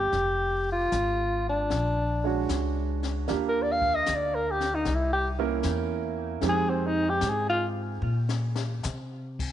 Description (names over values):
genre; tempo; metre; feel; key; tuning
jazz ballad; 76 BPM; 4/4; swing 69% on 8ths; unclear; A4 = 440 Hz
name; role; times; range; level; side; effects
breathy alto saxophone; melody; 0.0-7.7 s; C4 to F5; -27 LUFS; left 1 dB; tape echo
clear upright piano; accompaniment; 0.0-8.0 s; Ab3 to C#5; -30 LUFS; right 11 dB; none
upright bass; bass; 0.0-9.5 s; F1 to C3; -30 LUFS; left 1 dB; none
jazz brush drum kit; drums; 0.1-9.5 s; brushed snare drum, crash cymbal, hi-hat, kick drum, snare drum; -37 LUFS; left 6 dB; none
room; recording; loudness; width
light reverb, small room ambience; 1960s-style stereo with parts hard left and right, nothing above 10.8 kHz; -25 LUFS; side -11 dB against mid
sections
0.0-9.5 A section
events
alto saxophone solo 0.0-9.5; drum fill 8.0-8.8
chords
0.1 Fm; 1.7 Bb7alt; 3.3 Ebmaj9; 4.9 C7b9; 6.4 Fm7; 8.0 Bbsus2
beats
| 0.12 0.91 1.70 2.49 | 3.28 4.07 4.85 5.64 | 6.42 7.22 8.02 8.84